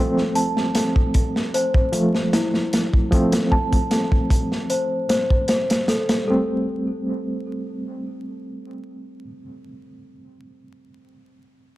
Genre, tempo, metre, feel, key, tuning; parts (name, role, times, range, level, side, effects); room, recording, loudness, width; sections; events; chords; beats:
trip hop; 76 BPM; 4/4; swing 53% on 16ths; A minor; A4 = 440 Hz
overdriven reed electric piano; accompaniment; 0.0-11.8 s; F3 to C4; -24 LUFS; equal; fast tremolo, low-pass filter, tape echo
celesta; arpeggios; 0.0-11.8 s; E4 to A5; -25 LUFS; left 1 dB; low-pass filter, ping-pong delay
crunchy breakbeat drum kit; drums; 0.2-6.3 s; hi-hat, kick drum, snare drum; -20 LUFS; equal
light reverb, small room ambience; dark, warm production, vinyl crackle; -18 LUFS; side -16 dB against mid
0.0-6.3 A section; 6.3-9.4 B section
filter sweep on reed electric piano 0.0-6.3; filter sweep on celesta 0.0-6.3
0.0 Fmaj7; 6.3 Am7
0.75 1.54 2.33 | 3.12 3.91 4.70 5.49 | 6.28 7.07 7.86 8.65